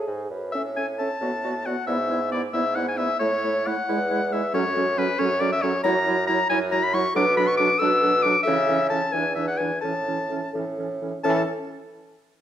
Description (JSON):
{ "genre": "quick classical-period movement for wind quintet", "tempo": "85-93 BPM (dotted quarters)", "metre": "6/8", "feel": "straight", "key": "A major", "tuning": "A4 = 440 Hz", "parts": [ { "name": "mellow French horn", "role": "accompaniment", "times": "0.0-11.4 s", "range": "E3 to B4", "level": "-30 LUFS", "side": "equal", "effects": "none" }, { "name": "warm clarinet", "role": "accompaniment", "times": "0.0-11.4 s", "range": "C#4 to A4", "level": "-30 LUFS", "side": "right 7 dB", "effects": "none" }, { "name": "warm bassoon", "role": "bass", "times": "0.0-11.4 s", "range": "E2 to C#3", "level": "-27 LUFS", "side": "right 2 dB", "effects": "none" }, { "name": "hollow concert flute", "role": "melody", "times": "0.5-11.5 s", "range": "A4 to E5", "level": "-33 LUFS", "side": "left 5 dB", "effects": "none" }, { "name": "warm oboe", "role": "second line", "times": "0.5-11.4 s", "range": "B4 to E6", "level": "-24 LUFS", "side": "left 3 dB", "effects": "none" } ], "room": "wet recital hall reverb, RT60 1.4 s", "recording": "none", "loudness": "-21 LUFS", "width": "side -10 dB against mid", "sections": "0.5-11.2 A section; 11.2-12.4 B section", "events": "none", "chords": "0.0 E (rootless); 0.5 A; 1.2 B7(no3)/A; 1.9 E7/G#; 3.2 A; 3.9 E; 4.5 F#m; 5.9 F#7; 7.2 Bm7; 8.5 A/C#; 9.1 E5; 9.8 A" }